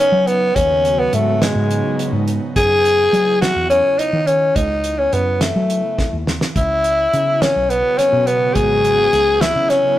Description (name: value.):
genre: progressive instrumental, band music in an uneven meter.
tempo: 210 BPM (eighths).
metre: 7/8.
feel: straight.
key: C# minor.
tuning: A4 = 441 Hz.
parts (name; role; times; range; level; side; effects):
growling tenor saxophone; melody; 0.0-10.0 s; G#3 to G#4; -15 LUFS; left 1 dB; none.
woody fretless electric bass; bass; 0.1-9.8 s; G#1 to F#3; -22 LUFS; equal; none.
cloth-damped thuddy drum kit; drums; 0.3-9.8 s; hi-hat, kick drum, snare drum; -21 LUFS; right 1 dB; none.
airy breathy pad; accompaniment; 0.6-10.0 s; C#3 to F#4; -26 LUFS; right 1 dB; chorus.
room: moderate stone room reverb, RT60 1.1 s.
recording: rough rehearsal-room recording, tube saturation.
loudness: -14 LUFS.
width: side -13 dB against mid.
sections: 0.0-10.0 A section.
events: drum fill 6.0-6.6.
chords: 0.0 G#m7; 2.6 F#m7; 6.6 C#m7.